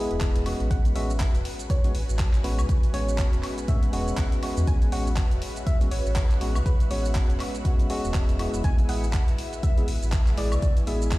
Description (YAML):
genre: deep house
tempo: 121 BPM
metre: 4/4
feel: swing 58% on 16ths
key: A major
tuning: A4 = 440 Hz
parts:
  - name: tine electric piano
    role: stabs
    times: 0.0-11.2 s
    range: G#3 to G#4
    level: -32 LUFS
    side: equal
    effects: sidechain pumping, dub echo
  - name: ethereal airy pad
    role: texture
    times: 0.0-11.2 s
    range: F#4 to G#5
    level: -40 LUFS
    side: left 1 dB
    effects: ensemble chorus, built-in reverb, sidechain pumping
  - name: sub bass with octave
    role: bass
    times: 0.1-11.2 s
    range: E1 to A2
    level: -27 LUFS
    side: equal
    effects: sidechain pumping
  - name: deep house drum kit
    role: drums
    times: 0.1-11.2 s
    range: handclaps, hi-hat, shaker, woodblock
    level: -36 LUFS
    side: equal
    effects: none
  - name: electronic kick drum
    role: drums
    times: 0.2-11.2 s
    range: none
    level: -23 LUFS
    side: equal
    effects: none
  - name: soft round pluck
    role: melody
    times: 0.7-11.2 s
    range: B4 to G#5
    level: -37 LUFS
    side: right 1 dB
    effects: analog chorus, digital delay
  - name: warm analog pad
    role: sustained chords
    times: 0.7-11.2 s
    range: G#3 to B4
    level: -39 LUFS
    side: left 1 dB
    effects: chorus, tremolo, sidechain pumping
room: digital ambience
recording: played on a big sound system in a bare room, large studio reverb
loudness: -22 LUFS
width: side -19 dB against mid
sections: 0.0-11.2 A section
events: none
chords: 0.0 Amaj13; 8.6 E/A